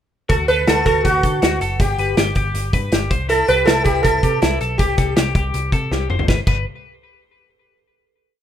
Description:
jangly indie pop; 161 BPM; 4/4; straight; G major; A4 = 443 Hz
sitar; melody; 0.3-5.1 s; F#4 to B4; -18 LUFS; right 2 dB; plate reverb
twelve-string electric guitar; arpeggios; 0.3-6.6 s; E4 to C5; -24 LUFS; left 4 dB; lush chorus, tape echo
vintage muted picked electric bass; bass; 0.3-6.6 s; F#1 to D3; -23 LUFS; equal
loose indie drum kit; drums; 0.3-6.6 s; crash cymbal, hi-hat, kick drum, snare drum, toms; -19 LUFS; equal
moderate studio ambience, RT60 0.5 s; rough home demo mix; -15 LUFS; side -10 dB against mid
0.3-6.3 pre-chorus; 6.3-7.8 final chord
drum fill 5.9-6.3
0.3 D; 1.8 G; 3.1 C; 6.3 G

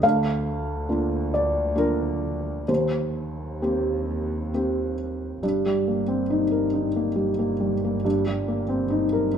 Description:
neoclassical piano and strings; 68 BPM; 3/4; rubato; A4 = 439 Hz
felt-muted upright piano; accompaniment; 0.0-9.4 s; D2 to F5; -22 LUFS; equal
clear double bass; bass; 0.0-9.4 s; G1 to Eb2; -31 LUFS; left 1 dB
moderate large studio reverb, RT60 1.2 s; minimal, uncompressed stereo recording; -22 LUFS; side -8 dB against mid
0.0-5.4 A section; 5.4-9.4 B section
0.0 Bb/D; 2.7 Cm7/Eb; 5.4 Cm7/G

